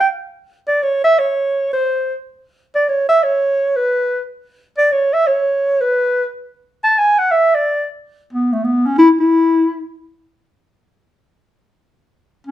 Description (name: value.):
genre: jazz.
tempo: free time.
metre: none.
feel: none.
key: unclear.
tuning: A4 = 440 Hz.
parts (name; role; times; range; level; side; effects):
breathy clarinet; solo; 0.0-9.9, 12.5 s; A3 to A5; -13 LUFS; equal; none.
room: wet club reverb, RT60 0.8 s.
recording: heard from further back in the room.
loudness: -13 LUFS.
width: side -13 dB against mid.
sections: 0.0-8.0 A section; 8.0-12.5 B section.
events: clarinet solo 0.0-8.0.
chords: none.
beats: free time.